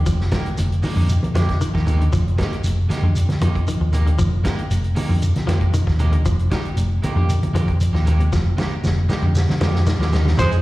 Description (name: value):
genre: afrobeat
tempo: 116 BPM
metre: 4/4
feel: straight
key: F dorian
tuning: A4 = 440 Hz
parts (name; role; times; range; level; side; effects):
- semi-hollow electric guitar; arpeggios; 0.1-10.6 s; C3 to F3; -29 LUFS; left 4 dB; tremolo, slapback echo
- hollow-body short-scale fingered electric bass; bass; 0.1-10.6 s; F1 to F2; -18 LUFS; equal; none
- warm soul drum kit; drums; 0.1-10.5 s; hi-hat, kick drum, snare drum; -26 LUFS; equal; none
- shekere; percussion; 0.1-10.6 s; none; -29 LUFS; right 1 dB; none
- electric guitar at the edge of break-up; stabs; 0.3-10.5 s; Ab3 to Ab4; -30 LUFS; right 3 dB; lush chorus, slapback echo
- congas; percussion; 0.3-10.5 s; none; -25 LUFS; equal; slapback echo
- clear trumpet; melody; 10.4-10.5 s; C5; -20 LUFS; right 2 dB; slapback echo
- raspy tenor saxophone; second line; 10.4-10.5 s; Ab3; -27 LUFS; right 3 dB; slapback echo
room: small room ambience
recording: live gig heard through the venue's PA, recital hall reverb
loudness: -17 LUFS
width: side -18 dB against mid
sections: 0.0-10.4 A section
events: drum fill 8.3-10.4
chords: 0.0 Fm11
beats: | 0.06 0.58 1.09 1.61 | 2.12 2.64 3.16 3.67 | 4.19 4.71 5.22 5.74 | 6.25 6.77 7.29 7.80 | 8.32 8.84 9.35 9.87 | 10.38